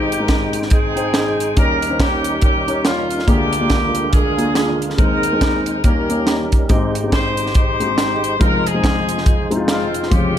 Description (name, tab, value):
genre	uptempo gospel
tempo	140 BPM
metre	4/4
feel	swing 59% on 8ths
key	Ab major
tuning	A4 = 441 Hz
part	mellow horn section	melody	0.0-10.4 s	Ab3 to C5	-20 LUFS	left 1 dB	none
part	dark grand piano	accompaniment	0.0-10.4 s	F1 to G5	-21 LUFS	left 2 dB	none
part	percussive tonewheel organ	sustained chords	0.0-10.4 s	F2 to G5	-25 LUFS	right 2 dB	slow rotary speaker, overdrive, chorus vibrato
part	warm French horn section	sustained chords	0.0-10.4 s	F2 to C5	-31 LUFS	right 2 dB	none
part	crisp fusion drum kit	drums	0.1-10.2 s	hi-hat, kick drum, snare drum	-17 LUFS	equal	none
room	light reverb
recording	none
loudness	-14 LUFS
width	side -10 dB against mid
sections	0.0-10.4 A section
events	none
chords	0.0 Abmaj7; 1.6 Eb7; 3.3 Bb7/D; 5.0 Ab/Eb; 5.8 Eb7; 6.7 Abmaj7; 8.4 Fm7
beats	0.29 0.72 1.15 | 1.57 2.00 2.43 2.85 | 3.28 3.71 4.13 4.56 | 4.99 5.42 5.84 6.27 | 6.70 7.12 7.55 7.98 | 8.40 8.83 9.26 9.69 | 10.11